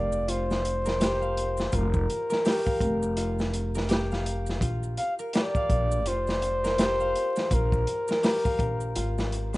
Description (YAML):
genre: trip hop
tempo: 83 BPM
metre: 4/4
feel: swing 59% on 16ths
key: unclear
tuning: A4 = 440 Hz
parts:
  - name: trumpet with bucket mute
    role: melody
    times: 0.0-9.6 s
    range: Bb4 to F5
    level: -28 LUFS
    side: left 1 dB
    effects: vintage 12-bit sampler grit, tape echo
  - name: concert harp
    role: arpeggios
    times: 0.0-9.6 s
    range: F4 to F5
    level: -34 LUFS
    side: equal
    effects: digital delay
  - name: upright bass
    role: bass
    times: 0.0-9.6 s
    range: F1 to Bb1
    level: -29 LUFS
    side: equal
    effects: none
  - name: maracas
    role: percussion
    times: 0.1-9.6 s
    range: none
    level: -46 LUFS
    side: right 4 dB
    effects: none
  - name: crunchy breakbeat drum kit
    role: drums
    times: 0.3-9.6 s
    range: hi-hat, kick drum, snare drum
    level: -28 LUFS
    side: equal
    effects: none
room: small room ambience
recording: rough home demo mix, vinyl crackle, nothing above 10.8 kHz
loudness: -24 LUFS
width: side -19 dB against mid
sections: 0.0-9.6 A section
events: none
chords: 0.0 Fsus24; 4.6 Bb7sus2